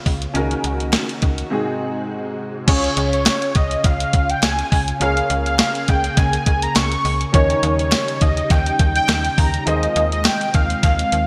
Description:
1980s-style pop; 103 BPM; 4/4; swing 55% on 16ths; A4 = 440 Hz
warm baby grand piano; accompaniment; 0.0-11.3 s; G#2 to Eb5; -28 LUFS; equal; ensemble chorus
ensemble organ-string; sustained chords; 0.0-11.3 s; B#2 to Ab4; -30 LUFS; equal; ensemble chorus
slap-like FM bass; bass; 0.1-11.3 s; C#2 to Eb2; -25 LUFS; equal
clean 12-bit digital drum machine; drums; 0.1-11.3 s; crash cymbal, hi-hat, kick drum, snare drum, tambourine; -20 LUFS; equal
group handclap; percussion; 0.9-11.0 s; -37 LUFS; equal
unison lead; melody; 2.7-11.3 s; Db5 to Db6; -23 LUFS; equal; digital delay
moderate lush hall reverb, RT60 2.3 s; bright 1980s-style digital production; -18 LUFS; mono
0.0-2.7 A section; 2.7-11.3 B section
break 1.5-2.7
0.3 F#6/C#; 1.5 G#7; 2.7 Db; 5.0 Bbm7/Db; 7.3 Eb7; 9.7 Ab6/Eb

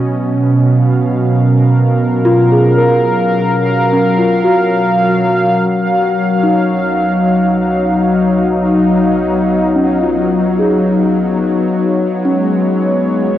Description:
ambient; 72 BPM; 4/4; straight; A4 = 440 Hz
warm analog pad; sustained chords; 0.0-13.4 s; B2 to E#5; -12 LUFS; equal; chorus
small celesta; arpeggios; 0.0-13.4 s; C#4 to A#4; -18 LUFS; equal; diffuse ambient delay
bowed-like drone; drone; 0.0-13.4 s; F#3 to B3; -20 LUFS; left 2 dB; built-in reverb
deep rumbling drone; bass; 6.5-13.4 s; B1; -35 LUFS; equal; built-in reverb, transformer saturation
wet cathedral reverb, RT60 6.0 s; worn, warbling old tape, cassette tape, warbly pitch drift; -10 LUFS; side -12 dB against mid
0.0-5.6 A section; 5.6-13.4 B section
fade-in on synth drone 5.6-13.4
0.0 D#m9/B; 12.3 C#7/B

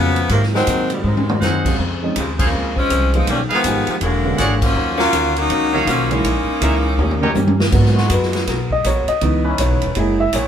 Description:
jazz, big band swing; 162 BPM; 4/4; swing 63% on 8ths; Eb minor; A4 = 438 Hz
edgy saxophone section; melody; 0.0-7.6 s; C3 to F4; -19 LUFS; left 1 dB
archtop guitar, miked and amplified; accompaniment; 0.0-10.5 s; Gb2 to C#5; -26 LUFS; left 4 dB
dark baby grand piano; accompaniment; 0.0-10.5 s; Db3 to E5; -21 LUFS; right 2 dB
upright bass; bass; 0.0-10.5 s; E1 to Bb2; -20 LUFS; equal
swinging big-band drum kit; drums; 0.2-10.4 s; crash cymbal, hi-hat, kick drum, ride cymbal, snare drum, toms; -23 LUFS; equal
bright trumpet section; stabs; 1.4-7.3 s; Gb4 to F#5; -22 LUFS; right 2 dB
muted trombone section; sustained chords; 7.9-9.9 s; E3 to B4; -25 LUFS; left 2 dB
moderate studio reverb, RT60 0.5 s; band playing live in one room; -15 LUFS; side -9 dB against mid
0.0-7.7 A section; 7.7-10.5 B section
drum fill 1.0-1.4, 7.0-7.7; band accent 2.3, 4.6; grand piano solo 7.7-10.5
0.3 Ab7; 1.8 Dbmaj7; 3.3 Fm7b5; 4.0 E13; 4.8 Ebm9; 6.2 Bbm7b5; 7.0 Eb7; 7.7 G#m9; 9.2 C#m9; 10.0 F#9

